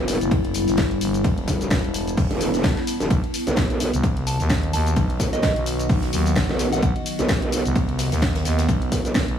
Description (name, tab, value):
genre	bass house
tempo	129 BPM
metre	4/4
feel	swing 56% on 16ths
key	unclear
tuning	A4 = 440 Hz
part	deep dark ambient pad	sustained chords	0.1-9.4 s	F#3 to D5	-31 LUFS	left 3 dB	chorus, built-in reverb, sidechain pumping
part	growl bass	bass	0.0-9.3 s	E1 to B1	-23 LUFS	equal	chorus, overdrive, sidechain pumping
part	warbly tape-like pad	texture	0.0-9.4 s	B3 to A5	-28 LUFS	equal	chorus, built-in reverb, phaser, sidechain pumping
part	garage drum kit	drums	0.1-9.4 s	hi-hat, shaker, snare drum	-28 LUFS	equal	studio reverb
part	natural country drum kit	drums	0.1-9.3 s	hi-hat, ride cymbal, snare drum	-36 LUFS	equal	high-pass filter on cymbals, studio reverb, high-pass filter on hats, high-pass filter on snare, high-pass filter on room
part	growling FM bass	bass	0.2-9.4 s	E1 to D#2	-24 LUFS	equal	tube saturation, sidechain pumping
part	electronic kick drum	drums	0.3-9.3 s	none	-22 LUFS	equal	overdrive, studio reverb
part	soft synth bell	melody	4.3-6.9 s	D#5 to A5	-29 LUFS	right 2 dB	chorus, phaser, tape echo
room	little or no reverb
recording	small room ambience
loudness	-19 LUFS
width	side -9 dB against mid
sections	0.0-9.4 A section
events	none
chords	0.0 Em7; 3.1 B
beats	0.31 0.78 | 1.24 1.71 2.17 2.64 | 3.10 3.57 4.03 4.50 | 4.96 5.43 5.89 6.36 | 6.83 7.29 7.75 8.22 | 8.69 9.15